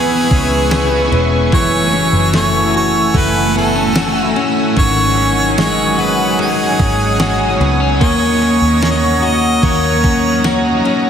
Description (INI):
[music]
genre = dream pop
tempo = 74 BPM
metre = 4/4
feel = straight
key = unclear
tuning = A4 = 441 Hz
[part]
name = clear harmonica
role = melody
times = 0.0-10.5 s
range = G#4 to D#5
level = -18 LUFS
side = right 1 dB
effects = tape echo
[part]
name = crunchy overdriven guitar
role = accompaniment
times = 0.0-11.1 s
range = G#2 to A#4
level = -20 LUFS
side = right 1 dB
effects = tremolo, wide subtle chorus
[part]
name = shimmering ambient pad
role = sustained chords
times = 0.0-11.1 s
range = A3 to E6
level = -19 LUFS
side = equal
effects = chorus, built-in reverb
[part]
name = clean electric guitar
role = arpeggios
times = 0.0-11.1 s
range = D#3 to G#4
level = -17 LUFS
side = left 3 dB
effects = lush chorus, tape echo
[part]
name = vintage muted picked electric bass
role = bass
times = 0.0-10.8 s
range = E1 to D#2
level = -19 LUFS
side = equal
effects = none
[part]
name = crisp 8-bit digital drum machine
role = drums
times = 0.3-11.0 s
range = kick drum, ride cymbal, snare drum, tambourine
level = -18 LUFS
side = equal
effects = overdrive
[sound]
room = wet concert hall reverb, RT60 2.3 s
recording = heavily compressed radio sound, multiband compression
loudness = -11 LUFS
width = side -8 dB against mid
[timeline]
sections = 0.0-11.1 A section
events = none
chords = 0.0 C#m7; 1.5 F#m9; 4.8 G#7sus4; 8.0 D#m7